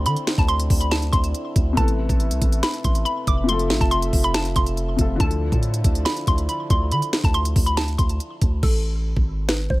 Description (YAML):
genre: hip hop, trap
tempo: 140 BPM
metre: 4/4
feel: half-time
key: unclear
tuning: A4 = 440 Hz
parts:
  - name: hollow square pluck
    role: melody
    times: 0.0-9.8 s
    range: A4 to D6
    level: -26 LUFS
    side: equal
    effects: chorus, low-pass filter, digital delay
  - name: felt-muted upright piano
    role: accompaniment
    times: 0.0-8.7 s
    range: C3 to A4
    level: -28 LUFS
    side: left 4 dB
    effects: low-pass filter
  - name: warm brass ensemble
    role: sustained chords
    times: 0.0-8.6 s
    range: D3 to E5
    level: -32 LUFS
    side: right 2 dB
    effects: none
  - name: long sustained 808-style bass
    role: bass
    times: 0.0-9.8 s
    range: F1 to D3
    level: -23 LUFS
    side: equal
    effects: none
  - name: trap drum kit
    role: drums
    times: 0.1-9.8 s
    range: crash cymbal, hi-hat, kick drum, snare drum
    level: -21 LUFS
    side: equal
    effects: none
room: little or no reverb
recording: none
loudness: -18 LUFS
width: side -19 dB against mid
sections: 0.0-8.6 A section; 8.6-9.8 B section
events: hi-hats muted 8.6-9.8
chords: 0.0 Dmadd9; 1.8 Amadd9; 3.5 F; 5.2 Dmadd9; 8.6 Amaj7(no3)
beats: | 0.06 0.49 0.92 1.34 | 1.77 2.20 2.63 3.06 | 3.49 3.92 4.34 4.77 | 5.20 5.63 6.06 6.49 | 6.92 7.34 7.77 8.20 | 8.63 9.06 9.49